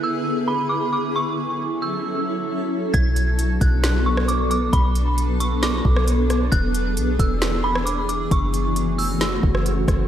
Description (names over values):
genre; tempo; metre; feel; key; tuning
hip hop, atmospheric cloud-rap; 134 BPM; 4/4; half-time; B dorian; A4 = 438 Hz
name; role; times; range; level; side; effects
dark detuned synth bell; melody; 0.0-9.6 s; B5 to G#6; -26 LUFS; right 2 dB; chorus, phaser, diffuse ambient delay
granular cloud pad; sustained chords; 0.0-10.1 s; D3 to A4; -24 LUFS; left 1 dB; built-in reverb, wide subtle chorus, sidechain pumping
soft 808-style bass; bass; 2.9-10.1 s; E1 to B1; -22 LUFS; equal; none
smooth R&B drum kit; drums; 2.9-10.0 s; hi-hat, kick drum, rim click, snare drum; -23 LUFS; equal; none
room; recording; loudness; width
moderate lush hall reverb, RT60 1.7 s, digital ambience; dreamy mix soaked in reverb; -18 LUFS; side -10 dB against mid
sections
0.0-10.1 A section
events
none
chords
0.0 E7; 1.1 F#m7; 2.9 Bm7; 6.5 E7; 8.3 F#m7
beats
0.25 0.70 | 1.15 1.60 2.04 2.49 | 2.94 3.39 3.84 4.28 | 4.73 5.18 5.63 6.07 | 6.52 6.97 7.42 7.87 | 8.31 8.76 9.21 9.66